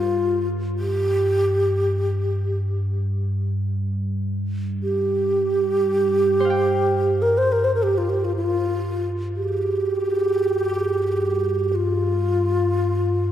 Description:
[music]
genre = world meditative, free-time meditation music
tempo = free time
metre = none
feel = none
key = unclear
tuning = A4 = 440 Hz
[part]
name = xiao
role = melody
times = 0.0-13.3 s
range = F4 to C5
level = -20 LUFS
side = equal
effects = tape echo
[part]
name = deep rumbling drone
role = drone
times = 0.0-13.3 s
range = G2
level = -25 LUFS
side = equal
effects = built-in reverb
[part]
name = Celtic harp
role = texture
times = 0.0-13.3 s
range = C5 to G5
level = -28 LUFS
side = left 3 dB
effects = none
[sound]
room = wet spring reverb, RT60 2.7 s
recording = echo-heavy mix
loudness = -19 LUFS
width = side -11 dB against mid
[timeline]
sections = 0.0-13.3 A section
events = none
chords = none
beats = free time

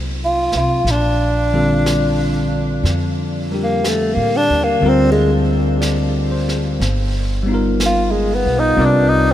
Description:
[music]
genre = jazz ballad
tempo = 61 BPM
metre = 4/4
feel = swing 68% on 8ths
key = unclear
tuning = A4 = 440 Hz
[part]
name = bell-like tine electric piano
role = accompaniment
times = 0.0-9.3 s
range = D3 to D5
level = -19 LUFS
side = left 1 dB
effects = wide subtle chorus
[part]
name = upright bass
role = bass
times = 0.0-9.3 s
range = G1 to A2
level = -20 LUFS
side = equal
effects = none
[part]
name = mellow tenor saxophone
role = melody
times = 0.2-9.3 s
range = Ab3 to F4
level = -18 LUFS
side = equal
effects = diffuse ambient delay
[part]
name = vintage brush drum kit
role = drums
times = 0.5-9.3 s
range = brushed snare drum, hi-hat, snare drum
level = -28 LUFS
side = right 1 dB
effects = none
[sound]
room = moderate huge ambient reverb, RT60 7.2 s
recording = dreamy mix soaked in reverb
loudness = -14 LUFS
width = side -12 dB against mid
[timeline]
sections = 0.0-9.3 A section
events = tenor saxophone solo 0.0-9.3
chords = 0.0 F7b9; 0.8 Bbmaj9; 4.8 Bb69/D; 6.8 G7alt; 8.8 Csus2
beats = | 0.85 1.85 2.85 3.85 | 4.84 5.83 6.81 7.80 | 8.78

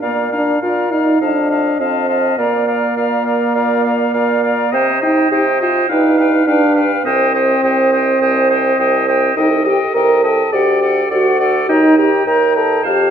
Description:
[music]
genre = quick classical-period movement for wind quintet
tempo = 103 BPM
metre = 4/4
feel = straight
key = Bb major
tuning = A4 = 445 Hz
[part]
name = silver concert flute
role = melody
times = 0.0-13.1 s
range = F#5 to Bb5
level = -23 LUFS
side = left 6 dB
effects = none
[part]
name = clear oboe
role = second line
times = 0.0-13.1 s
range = D5 to G5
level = -20 LUFS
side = left 4 dB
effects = none
[part]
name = bright clarinet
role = accompaniment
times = 0.0-13.1 s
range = A4 to Eb5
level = -21 LUFS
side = right 8 dB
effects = none
[part]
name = warm French horn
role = accompaniment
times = 0.0-13.1 s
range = Bb3 to Bb4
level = -15 LUFS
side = right 1 dB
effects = none
[part]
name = mellow bassoon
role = bass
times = 0.0-13.1 s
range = C2 to C3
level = -19 LUFS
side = right 3 dB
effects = none
[sound]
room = wet recital hall reverb, RT60 1.5 s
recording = minimal, uncompressed stereo recording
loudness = -12 LUFS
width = side -8 dB against mid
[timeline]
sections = 0.0-13.1 A section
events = none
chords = 0.0 Bb; 1.2 F7; 2.4 Bb; 4.7 Cm; 5.9 G7; 7.1 Cm; 9.4 Am7b5/C; 10.5 D; 11.7 Eb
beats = | 0.02 0.62 1.21 1.80 | 2.38 2.97 3.55 4.14 | 4.73 5.32 5.90 6.47 | 7.05 7.64 8.21 8.79 | 9.37 9.95 10.53 11.11 | 11.69 12.27 12.85

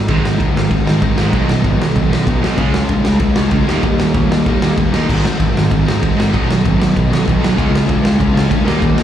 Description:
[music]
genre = punk rock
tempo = 192 BPM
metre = 4/4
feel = straight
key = unclear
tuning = A4 = 440 Hz
[part]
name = fuzz picked electric bass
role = bass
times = 0.0-9.0 s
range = F1 to Eb2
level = -18 LUFS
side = equal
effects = overdrive
[part]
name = distorted electric guitar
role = riff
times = 0.1-9.0 s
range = Ab2 to F4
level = -24 LUFS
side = left 1 dB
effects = overdrive, slapback echo
[part]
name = overdriven semi-hollow guitar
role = riff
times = 0.1-9.0 s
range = Ab2 to Eb4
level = -19 LUFS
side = left 7 dB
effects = slapback echo
[part]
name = sludgy distorted guitar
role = riff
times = 0.1-9.0 s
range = Ab2 to Db4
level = -18 LUFS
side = right 7 dB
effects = overdrive, slapback echo
[part]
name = raw garage drum kit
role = drums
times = 0.1-9.0 s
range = crash cymbal, kick drum, ride cymbal, snare drum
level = -17 LUFS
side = equal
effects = none
[sound]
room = small room ambience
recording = live gig heard through the venue's PA, club reverb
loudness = -12 LUFS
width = side -10 dB against mid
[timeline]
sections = 0.1-9.0 A section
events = none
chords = 0.1 Ab; 1.3 B; 2.6 Db; 3.7 Eb; 5.1 Ab; 6.3 B; 7.6 Db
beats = | 0.09 0.40 0.71 1.02 | 1.33 1.65 1.96 2.27 | 2.58 2.90 3.21 3.52 | 3.83 4.15 4.46 4.77 | 5.08 5.39 5.71 6.02 | 6.33 6.64 6.95 7.26 | 7.57 7.88 8.20 8.51 | 8.82

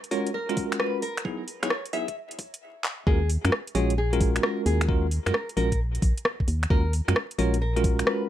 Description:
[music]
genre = UK garage, two-step garage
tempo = 132 BPM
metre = 4/4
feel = swing 67% on 16ths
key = Eb minor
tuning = A4 = 440 Hz
[part]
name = garage drum kit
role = drums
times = 0.0-8.2 s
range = finger snaps, handclaps, hi-hat, rim click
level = -28 LUFS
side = equal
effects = none
[part]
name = nylon-string guitar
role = melody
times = 0.1-8.2 s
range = Ab4 to Fb5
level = -33 LUFS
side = left 2 dB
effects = dub echo
[part]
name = bell-like tine electric piano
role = stabs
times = 0.1-8.3 s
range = Gb3 to Db5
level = -29 LUFS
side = right 1 dB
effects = fast stereo tremolo, dub echo
[part]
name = electronic kick drum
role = drums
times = 0.6-8.0 s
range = none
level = -24 LUFS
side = equal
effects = none
[part]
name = organ-like FM bass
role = bass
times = 3.1-8.0 s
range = Bb1 to Gb2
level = -25 LUFS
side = equal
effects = none
[sound]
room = light reverb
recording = vinyl crackle, high-pass filter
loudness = -23 LUFS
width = side -12 dB against mid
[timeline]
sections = 0.0-3.1 A section; 3.1-8.3 B section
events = build-up 0.0-3.1; filter sweep on tine electric piano 0.0-3.1; filter sweep 0.0-3.1; drum fill 2.8; drop 3.1-8.3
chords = 0.0 Ab13sus4; 1.0 Gb7sus2; 3.1 Ebm11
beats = 0.34 0.80 | 1.25 1.71 2.16 2.61 | 3.07 3.52 3.98 4.43 | 4.89 5.34 5.80 6.25 | 6.71 7.16 7.61 8.07

